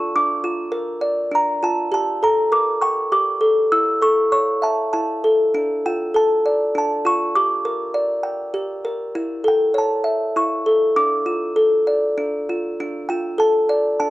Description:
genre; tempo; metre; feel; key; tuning
children's music; 100 BPM; 3/4; straight; D harmonic minor; A4 = 440 Hz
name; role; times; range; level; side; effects
music box; solo; 0.0-14.1 s; D4 to E6; -17 LUFS; equal; none
room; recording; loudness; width
light reverb; dark, warm production; -17 LUFS; side -17 dB against mid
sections
0.0-12.8 A section; 12.8-14.1 A section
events
none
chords
0.1 Bb/D; 1.9 Gmadd9; 3.7 A; 5.5 Dm; 7.4 Gm; 9.2 A; 11.0 Dm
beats
| 0.12 0.72 1.32 | 1.92 2.52 3.12 | 3.72 4.32 4.93 | 5.54 6.15 6.75 | 7.36 7.96 8.56 | 9.16 9.76 10.36 | 10.96 11.56 12.17 | 12.79 13.39 14.00

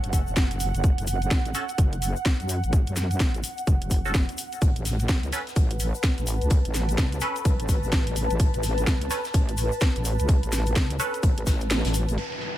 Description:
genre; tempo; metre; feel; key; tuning
bass house; 127 BPM; 4/4; swing 61% on 16ths; unclear; A4 = 438 Hz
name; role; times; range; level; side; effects
band-passed chord stab; stabs; 0.0-12.2 s; C#4 to B4; -33 LUFS; right 1 dB; phaser, sidechain pumping, ping-pong delay
wobble bass; bass; 0.0-12.2 s; F#1 to F#2; -27 LUFS; equal; chorus, overdrive, sidechain pumping
garage drum kit; drums; 0.0-12.6 s; crash cymbal, hi-hat, snare drum; -30 LUFS; equal; overdrive, low-pass filter on hats, low-pass filter on cymbals, low-pass filter on snare
egg shaker; percussion; 0.0-12.2 s; none; -37 LUFS; left 7 dB; none
ethereal airy pad; texture; 0.0-12.6 s; C#4 to A5; -33 LUFS; right 1 dB; ensemble chorus, built-in reverb, sidechain pumping
electronic kick drum; drums; 0.1-11.6 s; none; -22 LUFS; equal; none
big rock drum kit; drums; 4.6-12.2 s; hi-hat, snare drum; -41 LUFS; left 2 dB; high-pass filter on hats, high-pass filter on snare, high-pass filter on room
deep dark ambient pad; sustained chords; 12.2-12.6 s; none; barely audible; none; none
downlifter; sound effects; 12.2-12.6 s; none; -32 LUFS; right 1 dB; none
room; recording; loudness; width
digital ambience; none; -22 LUFS; side -13 dB against mid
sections
0.0-12.2 A section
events
kick drops out 11.7-12.2; band accent 11.7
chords
0.0 F#m; 4.6 Aadd9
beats
0.36 | 0.84 1.31 1.78 2.25 | 2.73 3.20 3.67 4.14 | 4.62 5.09 5.56 6.04 | 6.51 6.98 7.45 7.92 | 8.40 8.87 9.34 9.81 | 10.29 10.76 11.23 11.70 | 12.18

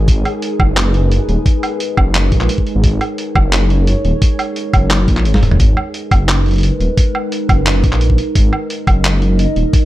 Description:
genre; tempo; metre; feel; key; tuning
half-time drum and bass; 174 BPM; 4/4; half-time; G# minor; A4 = 440 Hz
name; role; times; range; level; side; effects
dark analog pad; sustained chords; 0.0-9.9 s; G#3 to D#5; -21 LUFS; right 1 dB; chorus, phaser, sidechain pumping
dark detuned saw bass; bass; 0.0-9.6 s; D#1 to A#1; -14 LUFS; equal; tube saturation
flickering grainy texture; texture; 0.0-5.6 s; G#4; -30 LUFS; left 3 dB; built-in reverb
boom bap sampler-style drum kit; drums; 0.1-9.8 s; handclaps, hi-hat, snare drum, toms, woodblock; -19 LUFS; right 1 dB; none
electronic kick drum; drums; 0.1-9.8 s; none; -13 LUFS; equal; none
room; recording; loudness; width
digital ambience; dark, warm production; -12 LUFS; side -15 dB against mid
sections
0.0-5.6 A section; 5.6-9.9 A section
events
drop 0.0-5.6, 5.6-9.9; drum fill 5.3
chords
0.0 G#madd9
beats
| 0.08 0.42 0.77 1.11 | 1.46 1.80 2.15 2.49 | 2.84 3.18 3.53 3.87 | 4.22 4.56 4.91 5.25 | 5.60 5.94 6.29 6.63 | 6.97 7.32 7.67 8.01 | 8.35 8.70 9.04 9.39 | 9.73

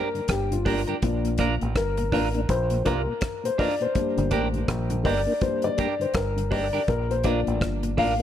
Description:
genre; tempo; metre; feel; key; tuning
roots reggae; 82 BPM; 4/4; swing 60% on 16ths; G minor; A4 = 440 Hz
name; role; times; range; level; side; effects
mellow tonewheel organ; accompaniment; 0.0-8.2 s; G2 to D4; -31 LUFS; left 2 dB; chorus vibrato, slow rotary speaker
semi-hollow electric guitar; accompaniment; 0.0-8.1 s; D4 to Bb4; -30 LUFS; right 5 dB; wide subtle chorus, dub echo
dark upright piano; stabs; 0.0-8.2 s; F3 to F5; -27 LUFS; left 4 dB; none
damped 70s drum kit; drums; 0.2-8.2 s; hi-hat, kick drum, rim click; -29 LUFS; right 1 dB; none
deep dub fingered electric bass; bass; 0.3-8.2 s; G1 to C2; -27 LUFS; right 1 dB; none
room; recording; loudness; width
light reverb, studio ambience; none; -22 LUFS; side -10 dB against mid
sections
0.0-8.2 A section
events
upright piano solo 0.0-8.2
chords
0.0 Gm; 1.0 Bb; 4.0 Gm; 6.9 Bb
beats
0.29 | 1.03 1.76 2.49 3.22 | 3.95 4.69 5.42 6.15 | 6.88 7.62

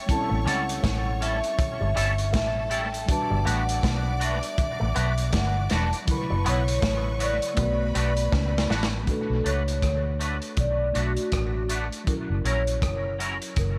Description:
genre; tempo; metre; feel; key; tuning
lovers rock reggae; 80 BPM; 4/4; swing 60% on 16ths; B minor; A4 = 440 Hz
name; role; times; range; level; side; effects
vibraphone with soft mallets; melody; 0.0-13.8 s; F#4 to B5; -32 LUFS; equal; tape echo
clear studio violin section; second line; 0.0-9.0 s; A4 to D6; -40 LUFS; equal; dub echo
mellow tine electric piano; accompaniment; 0.0-13.8 s; C#3 to D5; -37 LUFS; equal; none
crunchy breakbeat drum kit; drums; 0.1-13.8 s; hi-hat, kick drum, rim click, snare drum; -31 LUFS; equal; dub echo
electric guitar with an envelope filter; riff; 0.3-8.9 s; E3 to C#4; -40 LUFS; equal; none
vintage muted fingered electric bass; bass; 0.3-13.8 s; E1 to D2; -29 LUFS; equal; none
twangy electric guitar; stabs; 0.5-13.4 s; F#3 to B4; -35 LUFS; equal; ensemble chorus, dub echo
room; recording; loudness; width
light reverb, small room ambience; none; -25 LUFS; mono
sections
0.0-9.1 A section; 9.1-13.8 B section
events
drum fill 8.3-9.1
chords
0.0 A7; 3.1 Gmaj7; 6.1 F#7sus4; 7.6 Bm7; 12.1 F#7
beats
| 0.09 0.84 1.59 2.33 | 3.08 3.83 4.58 5.33 | 6.08 6.83 7.58 8.33 | 9.08 9.83 10.57 11.32 | 12.07 12.82 13.57

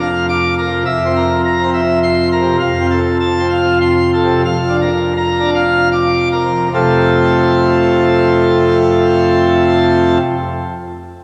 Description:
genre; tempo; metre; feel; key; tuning
classical, organ toccata; 70-104 BPM; 3/4; straight; F major; A4 = 442 Hz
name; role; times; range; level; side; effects
pipe organ, plenum; solo; 0.0-10.2 s; F1 to D6; -14 LUFS; equal; none
room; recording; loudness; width
wet church reverb, RT60 2.9 s; none; -14 LUFS; mono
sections
0.0-6.7 A section; 6.7-11.2 B section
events
slowing down 1.7-6.7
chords
0.0 Bb/F; 0.9 C7/F; 2.6 F; 4.5 Bb/F; 6.7 F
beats
0.28 | 0.86 1.44 2.02 | 2.60 3.19 3.81 | 4.47 5.16 5.91 | 6.74 7.60 8.46 | 9.31 10.17

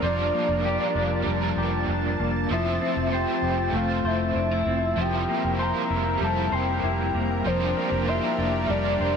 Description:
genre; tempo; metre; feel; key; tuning
dream pop; 97 BPM; 4/4; straight; F major; A4 = 440 Hz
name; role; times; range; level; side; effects
soft octave-layered synth lead; melody; 0.0-9.2 s; C5 to Bb5; -28 LUFS; left 1 dB; chorus, tremolo, ping-pong delay
crunchy overdriven guitar; accompaniment; 0.0-9.2 s; F3 to C5; -31 LUFS; right 4 dB; tremolo, ensemble chorus
lush unison pad; sustained chords; 0.0-9.2 s; F3 to A5; -30 LUFS; equal; chorus
clean electric guitar; arpeggios; 0.0-9.2 s; F3 to C5; -28 LUFS; left 3 dB; wide subtle chorus, ping-pong delay
vintage muted fingered electric bass; bass; 0.0-9.2 s; F1; -29 LUFS; equal; none
room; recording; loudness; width
moderate plate reverb, RT60 2.6 s; none; -22 LUFS; side -6 dB against mid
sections
0.0-9.2 A section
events
none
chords
0.0 Gm7/F; 2.5 Fmaj7; 5.0 C7/F; 7.5 Bb69/F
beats
| 0.03 0.65 1.26 1.88 | 2.50 3.12 3.74 4.36 | 4.97 5.59 6.21 6.83 | 7.45 8.07 8.69

